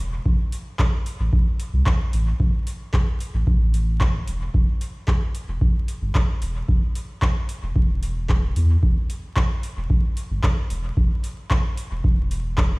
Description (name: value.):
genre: dub techno.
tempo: 112 BPM.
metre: 4/4.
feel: straight.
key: unclear.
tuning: A4 = 440 Hz.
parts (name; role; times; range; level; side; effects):
warm sub bass; bass; 0.0-12.8 s; E1 to E2; -22 LUFS; equal; sidechain pumping.
electronic kick drum; drums; 0.3-12.7 s; none; -20 LUFS; equal; none.
booming analog drum machine; drums; 0.5-12.7 s; handclaps, hi-hat; -32 LUFS; equal; dub echo.
room: digital ambience.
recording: played on a big sound system in a bare room, stone room reverb, vinyl crackle.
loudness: -20 LUFS.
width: side -27 dB against mid.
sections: 0.0-12.8 A section.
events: none.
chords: none.